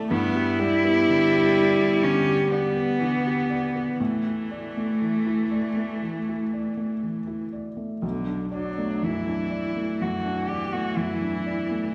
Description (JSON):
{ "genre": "neoclassical piano and strings", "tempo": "61 BPM", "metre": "4/4", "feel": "uneven beats, rubato", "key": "B minor", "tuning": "A4 = 440 Hz", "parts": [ { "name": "felt-muted upright piano", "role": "accompaniment", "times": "0.0-11.9 s", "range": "B1 to D5", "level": "-30 LUFS", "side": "equal", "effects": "none" }, { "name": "warm viola", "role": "accompaniment", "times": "0.0-11.9 s", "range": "D3 to B3", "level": "-31 LUFS", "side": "equal", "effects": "none" }, { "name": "dark cello", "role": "second line", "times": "0.1-11.9 s", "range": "A3 to G4", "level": "-28 LUFS", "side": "equal", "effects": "none" } ], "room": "wet recital hall reverb, RT60 1.4 s", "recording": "recorded in a church or concert hall", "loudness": "-25 LUFS", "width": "mono", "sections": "0.0-11.9 A section", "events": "none", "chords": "0.1 G6; 4.0 Dsus2/A; 8.0 Bm7", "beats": "| 0.11 1.08 2.03 2.99 | 3.99 5.01 6.02 7.02 | 8.03 9.03 10.01 10.98 | 11.94" }